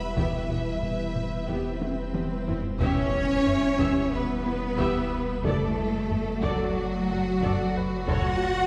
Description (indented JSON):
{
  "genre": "cinematic, hybrid orchestral and electronic film score",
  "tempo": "91 BPM",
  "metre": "4/4",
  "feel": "straight",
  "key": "E dorian",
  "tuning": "A4 = 441 Hz",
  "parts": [
    { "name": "warm symphonic violin section", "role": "melody", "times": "0.0-8.7 s", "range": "F#4 to B5", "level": "-41 LUFS", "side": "equal", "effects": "none" },
    { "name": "warm symphonic violin section", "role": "second line", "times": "0.0-8.7 s", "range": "F#4 to F#5", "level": "-36 LUFS", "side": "equal", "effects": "none" },
    { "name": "soft additive organ-like pad", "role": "sustained chords", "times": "0.0-8.7 s", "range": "F#3 to D5", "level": "-38 LUFS", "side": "equal", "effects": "ensemble chorus, built-in reverb" },
    { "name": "woody wave-folded pluck", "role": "arpeggios", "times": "0.0-8.3 s", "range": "D3 to E4", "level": "-41 LUFS", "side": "equal", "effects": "none" },
    { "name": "warm sub bass", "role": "bass", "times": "0.0-8.7 s", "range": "E1 to F#1", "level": "-38 LUFS", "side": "equal", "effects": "none" },
    { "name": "clear concert grand piano", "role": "texture", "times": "0.0-8.7 s", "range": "B4 to E5", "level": "-46 LUFS", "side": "equal", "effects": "none" },
    { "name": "dark symphonic viola section", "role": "accompaniment", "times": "0.2-8.4 s", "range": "B3 to E5", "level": "-37 LUFS", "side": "equal", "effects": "none" },
    { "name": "mellow French horn section", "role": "sustained chords", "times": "0.2-8.7 s", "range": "E3 to F#4", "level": "-34 LUFS", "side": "equal", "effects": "none" },
    { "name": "dark symphonic cello section", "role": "bass", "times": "0.2-8.7 s", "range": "E2 to F#4", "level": "-32 LUFS", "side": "equal", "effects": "none" },
    { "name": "warm studio double bass section", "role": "bass", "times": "0.2-8.2 s", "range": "E1 to F#1", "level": "-37 LUFS", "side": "equal", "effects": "none" },
    { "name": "taiko ensemble", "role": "drums", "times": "0.2-8.7 s", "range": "none", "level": "-35 LUFS", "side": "equal", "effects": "none" },
    { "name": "swell and impact", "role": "sound effects", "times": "1.3-5.4 s", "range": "none", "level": "-41 LUFS", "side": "equal", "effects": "none" }
  ],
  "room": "wet scoring stage reverb, RT60 2.1 s",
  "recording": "heard from further back in the room",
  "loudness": "-27 LUFS",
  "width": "mono",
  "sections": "0.0-2.8 A section; 2.8-8.7 B section",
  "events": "swell 1.3-2.8; drum fill 1.8-2.8; impact 2.8-5.4",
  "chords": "0.0 Em; 5.4 D/F#; 8.1 F#m",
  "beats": "| 0.17 0.83 1.49 2.15 | 2.81 3.46 4.12 4.78 | 5.44 6.10 6.76 7.42 | 8.08"
}